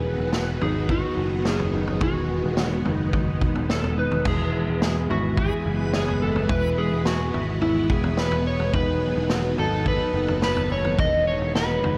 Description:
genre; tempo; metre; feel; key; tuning
dream pop; 107 BPM; 4/4; straight; E major; A4 = 438 Hz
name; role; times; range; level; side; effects
electric slide guitar; melody; 0.0-12.0 s; E4 to D#5; -29 LUFS; equal; analog chorus, analog delay
string machine, full ensemble; sustained chords; 0.0-12.0 s; D#3 to B3; -31 LUFS; equal; ensemble chorus
mellow electric guitar; arpeggios; 0.0-12.0 s; B3 to G#4; -35 LUFS; equal; analog chorus, analog delay
picked electric bass; bass; 0.0-12.0 s; E1 to G#1; -29 LUFS; equal; none
vintage drum kit; drums; 0.3-12.0 s; crash cymbal, kick drum, snare drum, toms; -29 LUFS; equal; none
room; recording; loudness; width
moderate plate reverb, RT60 2.4 s; dreamy mix soaked in reverb; -23 LUFS; mono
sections
0.0-4.3 A section; 4.3-12.0 A section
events
none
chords
0.0 B/E; 4.3 E; 8.7 B/E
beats
0.33 0.89 1.45 | 2.01 2.58 3.14 3.70 | 4.26 4.82 5.38 5.94 | 6.50 7.06 7.62 8.18 | 8.74 9.30 9.87 10.43 | 10.99 11.55

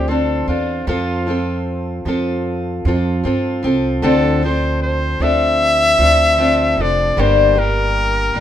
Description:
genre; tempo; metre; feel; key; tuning
acoustic pop; 76 BPM; 4/4; straight; D minor; A4 = 444 Hz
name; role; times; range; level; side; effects
clear trumpet; melody; 0.0-8.4 s; F4 to E5; -17 LUFS; left 1 dB; none
picked steel-string acoustic guitar; accompaniment; 0.0-8.4 s; G2 to A4; -18 LUFS; left 2 dB; none
upright bass; bass; 0.0-8.4 s; F1 to G2; -20 LUFS; right 1 dB; none
room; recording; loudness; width
moderate studio reverb, RT60 0.6 s; minimal, uncompressed stereo recording; -14 LUFS; side -10 dB against mid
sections
0.0-8.4 A section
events
none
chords
0.0 Dm7; 0.9 F; 4.0 Dm7; 7.2 Gm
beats
0.10 | 0.88 1.67 2.46 3.24 | 4.03 4.82 5.61 6.39 | 7.18 7.97

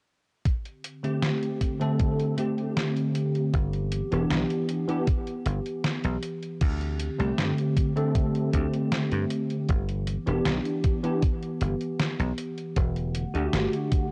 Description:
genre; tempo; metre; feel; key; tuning
vaporwave; 78 BPM; 4/4; straight; unclear; A4 = 439 Hz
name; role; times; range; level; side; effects
warbly tape-like pad; sustained chords; 0.4-14.1 s; D3 to F#5; -35 LUFS; equal; chorus, built-in reverb
detuned 8-bit digital drum machine; drums; 0.5-14.1 s; crash cymbal, hi-hat, snare drum; -33 LUFS; equal; none
electronic kick drum; drums; 0.5-14.1 s; none; -28 LUFS; equal; none
bell-like tine electric piano; accompaniment; 1.0-14.1 s; D3 to A4; -30 LUFS; equal; ensemble chorus, analog delay
dry thumbed slap bass; bass; 3.5-13.7 s; E1 to G2; -30 LUFS; equal; tube saturation
room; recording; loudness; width
digital ambience; dry, gritty hardware recording, cassette tape; -27 LUFS; mono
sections
0.5-6.6 A section; 6.6-14.1 B section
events
none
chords
0.5 D7sus4; 3.5 G6; 6.6 D7sus4; 9.7 G6; 12.8 Em11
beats
| 0.46 1.23 2.00 2.77 | 3.54 4.30 5.07 5.84 | 6.61 7.38 8.15 8.92 | 9.69 10.46 11.23 12.00 | 12.77 13.54

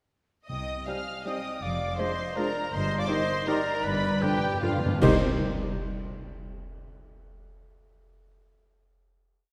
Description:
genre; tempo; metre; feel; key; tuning
classical, orchestral ballroom waltz; 146-175 BPM; 3/4; rubato; C minor; A4 = 440 Hz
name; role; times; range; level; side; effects
warm symphonic violin section; melody; 0.5-5.2 s; C5 to F6; -37 LUFS; equal; none
mellow oboe; second line; 0.5-5.2 s; F4 to F5; -39 LUFS; equal; none
rich symphonic violin section; second line; 0.5-5.2 s; C4 to F5; -40 LUFS; equal; none
silver concert flute; second line; 0.5-5.2 s; B4 to Ab5; -37 LUFS; equal; none
rich studio double bass section; bass; 0.5-5.2 s; F1 to C2; -36 LUFS; equal; none
rich symphonic cello section; bass; 0.5-5.2 s; F2 to C3; -35 LUFS; equal; none
timpani; percussion; 0.5-1.0, 3.8-5.2 s; G2 to C3; -36 LUFS; equal; none
warm clarinet; second line; 0.9-5.2 s; F4 to C5; -40 LUFS; equal; none
warm bassoon; accompaniment; 0.9-5.2 s; D3 to G3; -37 LUFS; equal; none
warm symphonic viola section; accompaniment; 0.9-5.2 s; F3 to F4; -39 LUFS; equal; none
mellow French horn section; sustained chords; 0.9-5.2 s; F3 to Eb4; -39 LUFS; equal; none
cymbal swell, clash cymbals and concert bass drum; percussion; 2.7-5.8 s; none; -39 LUFS; equal; none
room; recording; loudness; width
wet concert hall reverb, RT60 2.5 s; none; -28 LUFS; mono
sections
0.5-5.0 A section; 5.0-6.2 final chord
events
timpani fill 3.8-5.0; band accent 5.0-5.4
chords
0.5 Cm; 1.6 Ddim/F; 2.7 Cm/G; 3.8 G7; 5.0 Cm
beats
| 0.50 0.87 1.26 | 1.62 1.99 2.37 | 2.72 3.09 3.47 | 3.84 4.22 4.63 | 5.01 5.40

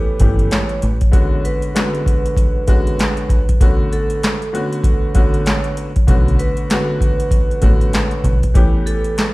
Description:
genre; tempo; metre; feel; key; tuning
hip hop, boom-bap hip-hop; 97 BPM; 4/4; swing 62% on 16ths; B minor; A4 = 440 Hz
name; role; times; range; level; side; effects
vibraphone with medium hard mallets; melody; 0.0-9.3 s; A4 to C#5; -25 LUFS; right 2 dB; high-pass filter, low-pass filter, ping-pong delay
warm upright piano; accompaniment; 0.0-9.3 s; D3 to G4; -21 LUFS; left 1 dB; high-pass filter, low-pass filter
deep dub fingered electric bass; bass; 0.2-1.0, 6.1-8.4 s; G1 to B1; -16 LUFS; equal; none
booming analog drum machine; drums; 0.2-9.3 s; handclaps, hi-hat, kick drum, snare drum; -15 LUFS; equal; overdrive
room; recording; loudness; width
little or no reverb; played on a big sound system in a bare room, large studio reverb; -13 LUFS; side -20 dB against mid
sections
0.0-9.3 A section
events
none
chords
0.0 A7; 1.1 Bm69/D; 3.6 Bm9; 8.6 A7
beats
0.52 | 1.13 1.75 2.37 2.99 | 3.61 4.23 4.84 5.46 | 6.08 6.70 7.32 7.94 | 8.56 9.18

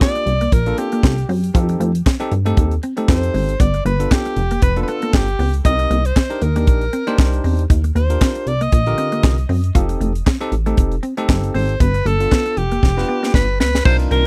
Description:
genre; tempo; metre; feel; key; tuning
early-eighties boogie funk; 117 BPM; 4/4; swing 56% on 16ths; unclear; A4 = 440 Hz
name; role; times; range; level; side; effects
breathy alto saxophone; melody; 0.0-14.3 s; G4 to Eb5; -24 LUFS; equal; none
barky tine electric piano; accompaniment; 0.0-14.3 s; D3 to C5; -27 LUFS; equal; none
clean electric guitar; riff; 0.0-14.2 s; A3 to F4; -27 LUFS; equal; lush chorus
tight funk drum kit; drums; 0.0-14.2 s; crash cymbal, handclaps, hi-hat, kick drum, snare drum; -18 LUFS; equal; none
plucky analog bass; bass; 0.3-14.3 s; F1 to G2; -20 LUFS; equal; none
string machine, full ensemble; sustained chords; 13.9-14.3 s; Eb3 to F4; -32 LUFS; equal; none
room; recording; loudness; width
little or no reverb; dry, close 1970s-style studio recording; -17 LUFS; mono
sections
0.0-13.9 A section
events
drum fill 12.8-13.9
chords
0.0 Ebmaj9 (rootless); 1.5 F9; 3.6 G7; 5.7 Cm9; 7.7 Ebmaj9; 9.8 F9; 11.8 G7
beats
0.01 0.52 1.03 | 1.55 2.06 2.57 3.08 | 3.60 4.11 4.62 5.14 | 5.65 6.16 6.67 7.19 | 7.70 8.21 8.73 9.24 | 9.75 10.27 10.78 11.29 | 11.80 12.32 12.83 13.34 | 13.86

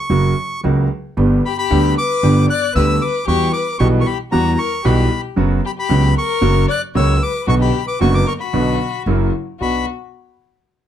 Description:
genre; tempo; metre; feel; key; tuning
tango; 114 BPM; 4/4; rubato; B harmonic minor; A4 = 440 Hz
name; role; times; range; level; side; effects
bandoneon; melody; 0.0-9.9 s; A#5 to F#6; -22 LUFS; left 1 dB; none
clear baby grand piano; accompaniment; 0.1-9.8 s; F#1 to G4; -18 LUFS; right 2 dB; none
upright bass; bass; 0.1-9.8 s; F#1 to E2; -17 LUFS; right 1 dB; none
warm violin; second line; 1.5-9.8 s; F#4 to D5; -23 LUFS; left 8 dB; none
room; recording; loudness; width
light reverb; close, detailed microphones; -14 LUFS; side -10 dB against mid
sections
0.0-9.6 A section; 9.6-10.9 B section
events
none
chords
0.0 F#; 1.2 G; 3.3 Emadd9; 5.4 F#sus4; 6.4 F#; 7.5 Bm; 9.1 F#7; 9.6 Bm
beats
0.10 0.63 | 1.17 1.70 2.23 2.75 | 3.27 3.80 4.32 4.84 | 5.37 5.89 6.42 6.95 | 7.47 8.00 8.53 9.06 | 9.60

